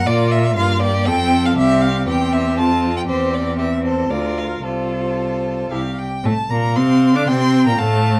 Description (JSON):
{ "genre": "quick classical-period movement for string quartet", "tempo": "117 BPM", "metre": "3/4", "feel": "rubato", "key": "F major", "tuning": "A4 = 439 Hz", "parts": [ { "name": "rich violin", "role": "melody", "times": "0.0-8.2 s", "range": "C5 to D6", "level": "-24 LUFS", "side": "equal", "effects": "none" }, { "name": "rich violin", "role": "second line", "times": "0.0-8.2 s", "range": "F4 to G5", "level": "-29 LUFS", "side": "equal", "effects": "none" }, { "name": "rich viola", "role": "accompaniment", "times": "0.0-8.2 s", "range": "A3 to F4", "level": "-22 LUFS", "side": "equal", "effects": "none" }, { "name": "clear cello", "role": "bass", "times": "0.0-8.2 s", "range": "C2 to D3", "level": "-22 LUFS", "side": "equal", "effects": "none" } ], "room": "moderate large studio reverb, RT60 0.8 s", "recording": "none", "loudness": "-18 LUFS", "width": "mono", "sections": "0.0-6.2 A section; 6.2-8.2 B section", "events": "none", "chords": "0.1 Bb5; 1.1 F; 1.6 C; 2.6 F; 3.1 C/E; 4.1 Bb/D; 4.6 F/C; 5.7 C; 6.2 F; 7.3 C5", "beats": "| 0.07 0.57 1.06 | 1.57 2.07 2.58 | 3.08 3.58 4.11 | 4.64 5.18 5.71 | 6.25 6.76 7.28 | 7.79" }